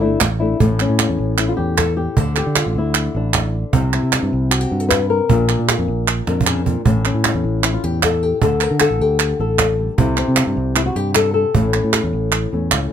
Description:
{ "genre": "flamenco", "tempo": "154 BPM", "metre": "4/4", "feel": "straight", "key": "unclear", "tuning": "A4 = 440 Hz", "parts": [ { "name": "flamenco guitar", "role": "melody", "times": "0.0-12.9 s", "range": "A2 to B4", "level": "-19 LUFS", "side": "left 4 dB", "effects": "plate reverb" }, { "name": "fingered electric bass", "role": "bass", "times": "0.0-12.9 s", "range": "G1 to D3", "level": "-20 LUFS", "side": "right 1 dB", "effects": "none" }, { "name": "cajon", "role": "percussion", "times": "0.2-12.9 s", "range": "none", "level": "-19 LUFS", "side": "right 5 dB", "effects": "none" }, { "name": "palmas hand claps", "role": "percussion", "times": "0.2-12.9 s", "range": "none", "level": "-19 LUFS", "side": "right 7 dB", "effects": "none" } ], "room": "light reverb", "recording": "none", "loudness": "-15 LUFS", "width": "side -9 dB against mid", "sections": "0.6-12.9 A section", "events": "drum fill 6.3-6.9", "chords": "0.0 Asus4; 0.6 A; 2.2 D5; 3.7 C; 5.3 Bb; 6.9 A; 8.4 D5; 10.0 C; 11.5 A" }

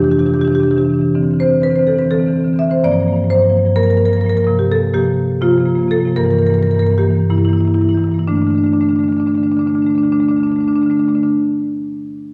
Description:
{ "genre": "classical, contemporary piece for solo marimba", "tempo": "173-260 BPM (eighths)", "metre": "7/8", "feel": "rubato", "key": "D minor", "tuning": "A4 = 440 Hz", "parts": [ { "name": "marimba with medium hard mallets", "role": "solo", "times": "0.0-11.3 s", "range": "G2 to E5", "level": "-15 LUFS", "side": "equal", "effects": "none" } ], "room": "wet recital hall reverb, RT60 1.6 s", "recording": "heard from further back in the room, tape saturation", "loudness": "-15 LUFS", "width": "mono", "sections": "0.0-8.3 A section; 8.3-12.3 B section", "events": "slowing down 3.6-8.3", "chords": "0.0 Cadd9; 1.1 Dsus2; 2.8 Gm7; 4.5 C7sus4; 6.2 Gm6; 8.3 D5" }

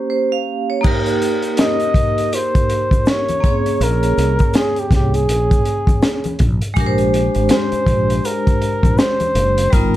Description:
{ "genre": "hip hop, jazz-hop", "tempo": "81 BPM", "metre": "4/4", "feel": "swing 61% on 16ths", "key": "Bb dorian", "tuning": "A4 = 440 Hz", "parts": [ { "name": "vibraphone with medium hard mallets", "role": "accompaniment", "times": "0.0-10.0 s", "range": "G3 to F5", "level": "-20 LUFS", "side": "right 1 dB", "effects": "none" }, { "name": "crunchy breakbeat drum kit", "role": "drums", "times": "0.8-10.0 s", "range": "crash cymbal, hi-hat, kick drum, snare drum", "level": "-17 LUFS", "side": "equal", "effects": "none" }, { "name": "tube shaker and congas", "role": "percussion", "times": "0.8-9.9 s", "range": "none", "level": "-29 LUFS", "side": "left 3 dB", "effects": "none" }, { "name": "breathy flugelhorn", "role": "melody", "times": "1.6-10.0 s", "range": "G4 to Eb5", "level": "-20 LUFS", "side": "left 1 dB", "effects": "none" }, { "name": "mellow fretless electric bass", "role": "bass", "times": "3.8-10.0 s", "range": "Gb1 to C2", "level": "-18 LUFS", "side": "equal", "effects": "none" } ], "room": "light reverb", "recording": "dark, warm production", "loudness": "-14 LUFS", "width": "side -14 dB against mid", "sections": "0.8-10.0 A section", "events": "break 0.0-0.8", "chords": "0.0 Bbm69; 0.8 Cm7; 3.4 Bbm9; 6.8 Bb13" }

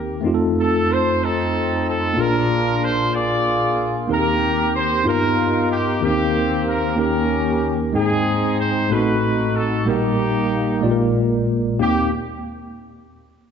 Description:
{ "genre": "gospel", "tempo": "62 BPM (dotted quarters)", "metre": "6/8", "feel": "straight", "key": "Eb major", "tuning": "A4 = 441 Hz", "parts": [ { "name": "clear horn section", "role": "melody", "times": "0.0-12.1 s", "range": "Bb3 to D5", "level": "-21 LUFS", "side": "equal", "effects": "none" }, { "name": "tine electric piano", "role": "accompaniment", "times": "0.0-12.1 s", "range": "A1 to G5", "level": "-19 LUFS", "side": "equal", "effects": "medium stereo tremolo" } ], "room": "wet concert hall reverb, RT60 2.1 s", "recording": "dark, warm production, nothing above 7.8 kHz", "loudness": "-17 LUFS", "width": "side -7 dB against mid", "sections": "0.0-11.8 A section; 11.8-13.5 B section", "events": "none", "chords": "0.2 F7; 2.2 Bb7; 4.1 Eb6; 5.1 G7alt; 6.0 Cm7/Eb; 7.0 Eb7; 7.9 Abmaj7; 8.9 Adim7; 9.9 Eb/Bb; 10.8 Bb7; 11.8 Eb6" }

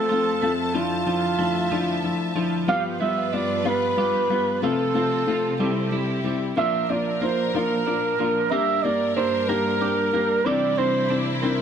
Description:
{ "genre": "six-eight pop ballad", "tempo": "62 BPM (dotted quarters)", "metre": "6/8", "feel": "straight", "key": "unclear", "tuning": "A4 = 440 Hz", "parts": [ { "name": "mellow flugelhorn", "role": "melody", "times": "0.0-11.6 s", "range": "F4 to F5", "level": "-24 LUFS", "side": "right 3 dB", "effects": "digital delay" }, { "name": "felt-muted upright piano", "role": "accompaniment", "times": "0.0-11.6 s", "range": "C3 to G4", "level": "-25 LUFS", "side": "left 5 dB", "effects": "none" }, { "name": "warm studio string section", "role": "sustained chords", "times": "0.0-11.6 s", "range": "F2 to A5", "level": "-29 LUFS", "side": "equal", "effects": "none" }, { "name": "twelve-string electric guitar", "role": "arpeggios", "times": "0.0-11.6 s", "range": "E3 to A4", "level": "-31 LUFS", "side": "right 6 dB", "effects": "analog chorus" } ], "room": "moderate echo chamber reverb, RT60 1.8 s, small room reverb", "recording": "none", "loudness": "-20 LUFS", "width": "side -8 dB against mid", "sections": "0.0-11.6 A section", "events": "none", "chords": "0.0 F; 0.8 Dmadd9/F; 2.7 G7; 4.6 F/C; 5.6 C; 6.6 Bb; 8.5 Gm; 10.5 Cadd9" }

